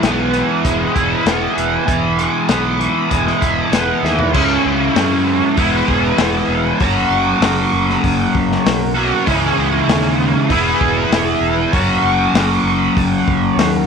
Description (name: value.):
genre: psychedelic rock.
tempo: 97 BPM.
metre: 4/4.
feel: straight.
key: E lydian.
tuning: A4 = 440 Hz.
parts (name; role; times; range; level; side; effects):
cranked stack guitar; riff; 0.0-13.9 s; C#3 to G#4; -14 LUFS; equal; overdrive, flanger.
fuzz fingered electric bass; bass; 0.0-13.9 s; E1 to F#2; -22 LUFS; right 1 dB; overdrive.
crunchy breakbeat drum kit; drums; 0.0-13.7 s; crash cymbal, hi-hat, kick drum, snare drum, toms; -20 LUFS; left 3 dB; none.
room: small room ambience.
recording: 1960s-style stereo.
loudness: -13 LUFS.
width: side -6 dB against mid.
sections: 0.0-4.3 A section; 4.3-13.9 B section.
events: drum fill 4.0-4.3.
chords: 0.0 E; 4.3 C#m; 5.6 E; 6.8 F#; 9.3 C#m; 10.5 E; 11.7 F#.